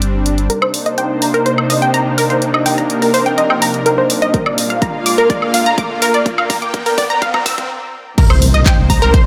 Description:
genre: progressive house.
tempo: 125 BPM.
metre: 4/4.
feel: straight.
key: C minor.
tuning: A4 = 439 Hz.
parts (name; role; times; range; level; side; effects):
supersaw pad; sustained chords; 0.0-9.3 s; Bb2 to G5; -21 LUFS; equal; sidechain pumping, low-pass filter.
dark detuned saw bass; bass; 0.0-0.5, 8.3-9.1 s; G1 to C2; -17 LUFS; equal; sidechain pumping.
pop drum kit; drums; 0.0-9.2 s; crash cymbal, handclaps, hi-hat, woodblock; -22 LUFS; equal; none.
unison pluck; arpeggios; 0.5-9.2 s; Bb4 to Bb6; -18 LUFS; equal; sidechain pumping, dub echo.
riser and impact; sound effects; 2.8-9.3 s; none; -27 LUFS; equal; none.
electronic kick drum; drums; 4.3-9.2 s; none; -16 LUFS; equal; none.
room: moderate lush hall reverb, RT60 2.0 s.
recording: high-pass filter.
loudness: -14 LUFS.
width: mono.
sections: 0.5-8.2 A section; 8.2-9.3 B section.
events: build-up 0.5-8.2; filter sweep on synth pluck 0.5-8.2; filter sweep on supersaw synth 0.5-8.2; riser 2.8-7.7; drum fill 4.3-7.7; stop 7.7-8.2; drop 8.2-9.3; impact 8.2-9.3.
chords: 0.5 Cm7; 4.3 Bb; 8.2 Cm7.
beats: 0.02 | 0.50 0.98 1.46 1.94 | 2.42 2.90 3.38 3.86 | 4.34 4.82 5.30 5.78 | 6.26 6.74 7.22 7.70 | 8.18 8.66 9.14.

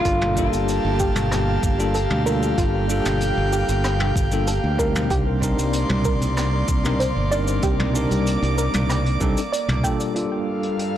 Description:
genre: sunset chillout.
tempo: 95 BPM.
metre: 4/4.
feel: straight.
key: G minor.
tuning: A4 = 439 Hz.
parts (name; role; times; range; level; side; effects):
nylon-string guitar; melody; 0.0-0.5 s; F4; -25 LUFS; left 2 dB; ping-pong delay.
bell-like tine electric piano; accompaniment; 0.0-11.0 s; G3 to Bb4; -26 LUFS; equal; medium stereo tremolo, auto-pan, low-pass filter, ping-pong delay.
airy breathy pad; sustained chords; 0.0-11.0 s; G2 to D6; -26 LUFS; equal; chorus.
jazz brush drum kit; drums; 0.0-10.9 s; cabasa, hi-hat, rim click, toms; -28 LUFS; equal; none.
soft round pluck; arpeggios; 0.1-10.5 s; F4 to G5; -29 LUFS; right 2 dB; chorus, cassette tape, ping-pong delay.
modern bright fingered electric bass; bass; 0.1-9.8 s; G1 to D2; -23 LUFS; equal; none.
electronic kick drum; drums; 0.1-10.0 s; none; -24 LUFS; equal; none.
room: light reverb.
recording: blown-out, overdriven recording, overdrive.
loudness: -19 LUFS.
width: side -11 dB against mid.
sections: 0.0-10.2 A section.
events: none.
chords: 0.0 Gm9.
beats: | 0.05 0.68 1.31 1.95 | 2.58 3.21 3.84 4.47 | 5.11 5.74 6.37 7.00 | 7.63 8.26 8.89 9.53 | 10.16 10.79.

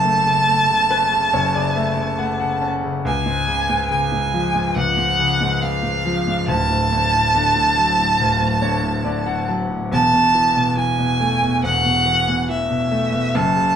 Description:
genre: pop.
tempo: 70 BPM.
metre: 4/4.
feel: straight.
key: unclear.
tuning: A4 = 441 Hz.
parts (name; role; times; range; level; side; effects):
warm violin; melody; 0.0-13.8 s; E5 to A5; -18 LUFS; right 2 dB; none.
clear concert grand piano; accompaniment; 0.0-13.8 s; D1 to A5; -20 LUFS; left 1 dB; none.
room: wet studio reverb, RT60 0.5 s.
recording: band playing live in one room.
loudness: -16 LUFS.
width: side -8 dB against mid.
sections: 0.0-13.8 A section.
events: grand piano fill 0.5-3.1, 8.2-9.9.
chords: 0.0 F#m; 3.1 C#; 6.5 D; 9.9 Esus4.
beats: 0.49 1.34 2.20 | 3.06 3.92 4.77 5.63 | 6.49 7.34 8.20 9.06 | 9.92 10.77 11.63 12.49 | 13.34.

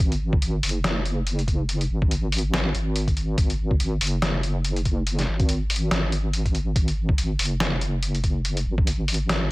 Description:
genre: deep dubstep.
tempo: 142 BPM.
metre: 4/4.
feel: swing 57% on 16ths, half-time.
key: unclear.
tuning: A4 = 440 Hz.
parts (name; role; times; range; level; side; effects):
deep soft wobble bass; bass; 0.0-9.5 s; F#1 to G#1; -24 LUFS; equal; chorus.
electronic kick drum; drums; 0.0-8.9 s; none; -23 LUFS; equal; none.
trip hop sampler-style drum kit; drums; 0.0-9.4 s; hi-hat, snare drum; -27 LUFS; equal; none.
room: little or no reverb.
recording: none.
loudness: -21 LUFS.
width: side -21 dB against mid.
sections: 0.0-9.5 A section.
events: none.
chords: none.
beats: | 0.00 0.42 0.84 1.26 | 1.69 2.11 2.53 2.95 | 3.38 3.80 4.22 4.64 | 5.07 5.49 5.91 6.33 | 6.76 7.18 7.60 8.03 | 8.45 8.87 9.29.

